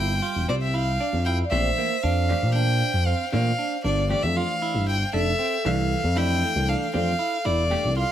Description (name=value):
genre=progressive instrumental, progressive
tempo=232 BPM (eighths)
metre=7/8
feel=straight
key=unclear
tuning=A4 = 440 Hz
part: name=clear violin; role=melody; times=0.0-8.1 s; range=D5 to G5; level=-26 LUFS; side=left 1 dB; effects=ping-pong delay
part: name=vintage hollow-body jazz guitar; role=accompaniment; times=0.0-7.9 s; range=E3 to F5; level=-32 LUFS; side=left 2 dB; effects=none
part: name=semi-hollow electric guitar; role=arpeggios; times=0.0-8.1 s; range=E3 to G4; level=-31 LUFS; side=right 6 dB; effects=ping-pong delay
part: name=smooth gliding synth bass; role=bass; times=0.0-8.0 s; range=E1 to Bb2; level=-24 LUFS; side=equal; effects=none
part: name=vibraphone with medium hard mallets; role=second line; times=1.4-8.1 s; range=A4 to D5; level=-32 LUFS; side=right 2 dB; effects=none
room=moderate small room reverb, RT60 0.5 s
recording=none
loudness=-21 LUFS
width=side -11 dB against mid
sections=0.0-1.5 A section; 1.5-8.1 B section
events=hollow-body jazz guitar fill 0.7-1.5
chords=0.0 Gm; 1.5 Bbadd9; 5.1 Fmaj7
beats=0.23 0.49 0.74 1.00 1.26 | 1.52 1.78 2.04 2.29 2.55 2.81 3.07 | 3.33 3.59 3.84 4.10 4.36 4.62 4.88 | 5.13 5.39 5.65 5.91 6.17 6.42 6.68 | 6.94 7.20 7.46 7.72 7.97